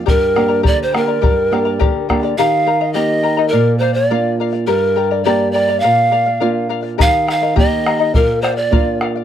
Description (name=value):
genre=andean folk, Andean ensemble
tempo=104 BPM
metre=2/4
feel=straight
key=G minor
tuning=A4 = 439 Hz
part: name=charango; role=accompaniment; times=0.0-9.2 s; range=G4 to Bb5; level=-20 LUFS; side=left 13 dB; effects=none
part: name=nylon-string guitar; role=accompaniment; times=0.0-9.2 s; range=G2 to G4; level=-19 LUFS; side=right 3 dB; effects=none
part: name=breathy pan flute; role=melody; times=0.1-9.0 s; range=Bb4 to F5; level=-16 LUFS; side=right 1 dB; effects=none
part: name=bombo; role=percussion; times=0.1-2.2, 7.0-9.1 s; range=none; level=-17 LUFS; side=equal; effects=none
room=little or no reverb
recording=dry, close 1970s-style studio recording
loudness=-13 LUFS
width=side -10 dB against mid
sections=0.0-2.4 A section; 2.4-9.2 A section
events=none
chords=0.1 Gm; 2.4 Eb; 3.5 Bb; 4.7 Gm; 5.8 Bb; 7.0 Eb; 8.1 Bb